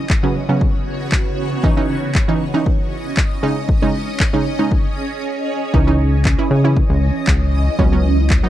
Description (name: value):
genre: dance-pop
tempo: 117 BPM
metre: 4/4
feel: straight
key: C# minor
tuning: A4 = 440 Hz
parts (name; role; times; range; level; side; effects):
- wide unison pluck; accompaniment; 0.0-8.5 s; C#3 to E4; -20 LUFS; right 2 dB; sidechain pumping
- shimmering ambient pad; sustained chords; 0.0-8.5 s; C#3 to D#5; -23 LUFS; right 1 dB; chorus, built-in reverb, phaser, sidechain pumping
- downlifter; sound effects; 0.0-1.6 s; none; barely audible; none; none
- deep house drum kit; drums; 0.1-8.4 s; handclaps, kick drum; -17 LUFS; left 1 dB; none
- plucky analog bass; bass; 5.7-8.4 s; C#2 to C#3; -15 LUFS; left 1 dB; sidechain pumping
room: little or no reverb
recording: dry, close 1970s-style studio recording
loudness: -15 LUFS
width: side -13 dB against mid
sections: 0.0-8.5 A section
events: break 5.2-5.7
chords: 0.0 Bsus2/C#; 1.6 C#madd9; 3.4 G#sus4/C#; 5.7 C#madd9; 7.8 Bsus2/C#